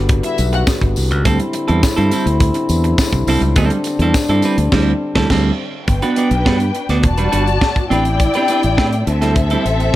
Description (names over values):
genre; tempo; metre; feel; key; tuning
disco; 104 BPM; 4/4; straight; unclear; A4 = 439 Hz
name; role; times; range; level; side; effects
dark French horn section; sustained chords; 0.0-5.9 s; D3 to F#4; -20 LUFS; left 2 dB; none
modern bright fingered electric bass; bass; 0.0-9.9 s; E1 to A2; -16 LUFS; equal; none
clean electric guitar; accompaniment; 0.1-9.9 s; G3 to D5; -20 LUFS; right 4 dB; tube saturation
tight funk drum kit; drums; 0.1-10.0 s; crash cymbal, hi-hat, kick drum, snare drum; -18 LUFS; equal; none
dark studio string section; second line; 0.2-0.6, 5.9-10.0 s; C4 to A5; -19 LUFS; left 3 dB; none
tambourine; percussion; 0.4-4.6 s; none; -31 LUFS; left 6 dB; none
room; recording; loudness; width
light reverb, studio reverb; none; -13 LUFS; side -15 dB against mid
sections
0.0-5.9 A section; 5.9-10.0 B section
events
band accent 4.7-5.9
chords
0.0 D9sus4; 5.9 Gmaj7; 7.0 Em9; 7.9 Am11; 9.1 D9sus4